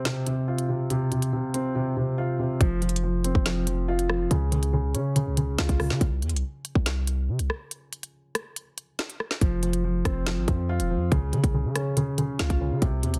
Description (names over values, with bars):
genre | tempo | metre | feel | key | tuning
hip hop, drill | 141 BPM | 4/4 | half-time | unclear | A4 = 440 Hz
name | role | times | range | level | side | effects
dark concert grand piano | accompaniment | 0.0-6.0, 9.4-13.2 s | C3 to F4 | -29 LUFS | equal | none
drill drum kit | drums | 0.1-13.2 s | hi-hat, kick drum, rim click, snare drum | -29 LUFS | equal | none
hard-hitting 808-style bass | bass | 2.6-13.2 s | E1 to Db3 | -29 LUFS | equal | none
room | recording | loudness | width
little or no reverb | dense, heavily limited modern master | -26 LUFS | mono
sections
0.0-9.4 A section; 9.4-13.2 B section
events
break 0.0-2.6, 6.0-9.4; drums muted 1.8-2.6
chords
0.0 Csus4; 2.6 F5; 4.3 Db; 6.0 N.C.; 9.4 F5; 11.1 Db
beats
0.05 0.48 | 0.90 1.33 1.75 2.18 | 2.61 3.03 3.46 3.88 | 4.31 4.73 5.16 5.58 | 6.01 6.44 6.86 7.29 | 7.71 8.14 8.56 8.99 | 9.41 9.84 10.27 10.69 | 11.12 11.54 11.97 12.39 | 12.82